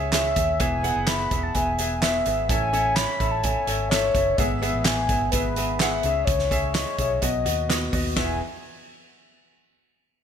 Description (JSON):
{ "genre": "piano-driven pop", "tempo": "127 BPM", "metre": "4/4", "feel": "straight", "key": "E major", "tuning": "A4 = 440 Hz", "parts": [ { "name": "clear grand piano", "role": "accompaniment", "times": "0.0-8.4 s", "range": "E2 to F#5", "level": "-27 LUFS", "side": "right 1 dB", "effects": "wide subtle chorus" }, { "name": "vintage muted fingered electric bass", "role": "bass", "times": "0.0-8.4 s", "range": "E1 to D#2", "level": "-29 LUFS", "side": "equal", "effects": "none" }, { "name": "mellow horn-like synth lead", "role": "melody", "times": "0.1-8.4 s", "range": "B4 to B5", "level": "-26 LUFS", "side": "left 3 dB", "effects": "chorus" }, { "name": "loose indie drum kit", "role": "drums", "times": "0.1-8.3 s", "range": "handclaps, hi-hat, kick drum, ride cymbal, snare drum", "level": "-26 LUFS", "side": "right 1 dB", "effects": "none" } ], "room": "moderate plate reverb, RT60 2.1 s", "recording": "bright 1980s-style digital production", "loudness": "-21 LUFS", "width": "side -8 dB against mid", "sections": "0.0-8.2 A section; 8.2-10.1 B section", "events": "none", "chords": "0.0 C#m; 0.6 E; 2.5 A; 4.4 E/G#; 6.0 C#m; 7.2 B; 8.2 E", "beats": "0.14 | 0.61 1.08 1.55 2.02 | 2.50 2.97 3.44 3.91 | 4.39 4.86 5.33 5.80 | 6.28 6.75 7.22 7.69 | 8.16" }